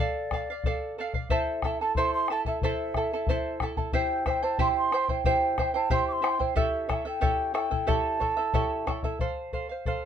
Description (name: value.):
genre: andean folk, Andean ensemble.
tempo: 91 BPM.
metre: 2/4.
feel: straight.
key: A minor.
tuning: A4 = 441 Hz.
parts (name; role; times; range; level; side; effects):
mellow large quena; melody; 0.0-8.9 s; D5 to D6; -29 LUFS; equal; none.
charango; accompaniment; 0.0-10.1 s; E4 to A5; -29 LUFS; right 3 dB; none.
bombo; percussion; 0.3-10.0 s; none; -30 LUFS; left 3 dB; none.
room: moderate small room reverb, RT60 0.5 s.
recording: minimal, uncompressed stereo recording.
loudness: -25 LUFS.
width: side -8 dB against mid.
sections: 0.0-9.2 A section.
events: none.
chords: 0.0 Dm; 1.3 Am; 3.9 C; 6.6 A7; 9.2 F.